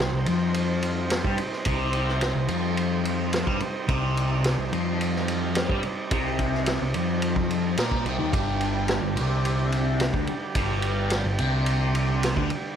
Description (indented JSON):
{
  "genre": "psychedelic rock",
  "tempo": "108 BPM",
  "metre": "4/4",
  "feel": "straight",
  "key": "C minor",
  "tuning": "A4 = 440 Hz",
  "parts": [
    { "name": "combo organ", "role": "sustained chords", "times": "0.0-12.8 s", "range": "D3 to D5", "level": "-32 LUFS", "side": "right 6 dB", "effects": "none" },
    { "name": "fuzz guitar", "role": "riff", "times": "0.0-12.5 s", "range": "G2 to Bb3", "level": "-26 LUFS", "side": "left 2 dB", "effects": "distortion, phaser" },
    { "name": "fuzz picked electric bass", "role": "bass", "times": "0.0-12.5 s", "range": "G1 to Bb2", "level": "-29 LUFS", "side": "right 1 dB", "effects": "overdrive" },
    { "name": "vintage drum kit", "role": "drums", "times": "0.0-12.6 s", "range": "kick drum, ride cymbal, snare drum", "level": "-29 LUFS", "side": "equal", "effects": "none" }
  ],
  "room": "light reverb, small room ambience",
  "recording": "none",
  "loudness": "-22 LUFS",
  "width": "side -8 dB against mid",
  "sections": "0.0-12.8 A section",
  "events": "none",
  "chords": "0.0 Cm; 8.3 G5"
}